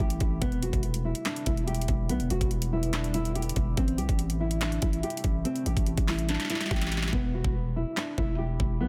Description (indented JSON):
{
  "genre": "hip hop, trap",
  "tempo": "143 BPM",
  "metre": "4/4",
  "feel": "half-time",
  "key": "E minor",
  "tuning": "A4 = 440 Hz",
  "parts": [
    { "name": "nylon-string guitar", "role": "melody", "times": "0.0-8.9 s", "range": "B3 to G4", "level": "-35 LUFS", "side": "equal", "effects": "low-pass filter, digital delay" },
    { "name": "deep dark ambient pad", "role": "sustained chords", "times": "0.0-7.1 s", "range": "C3 to E4", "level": "-44 LUFS", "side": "equal", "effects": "none" },
    { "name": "growling 808-style bass", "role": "bass", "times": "0.0-8.9 s", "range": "E1 to C2", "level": "-32 LUFS", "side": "equal", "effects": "none" },
    { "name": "trap drum kit", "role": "drums", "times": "0.0-8.7 s", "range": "handclaps, hi-hat, kick drum, snare drum", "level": "-32 LUFS", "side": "equal", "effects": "none" }
  ],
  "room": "digital ambience",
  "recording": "dense, heavily limited modern master",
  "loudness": "-28 LUFS",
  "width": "mono",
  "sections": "0.0-7.1 A section; 7.1-8.9 B section",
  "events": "drum fill 6.3-7.1; hi-hats muted 7.1-8.9",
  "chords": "0.4 Em7; 3.8 Am7; 7.1 Em",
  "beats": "0.00 | 0.42 0.84 1.26 1.68 | 2.10 2.52 2.94 3.35 | 3.77 4.19 4.61 5.03 | 5.45 5.87 6.29 6.71 | 7.13 7.55 7.97 8.39 | 8.81"
}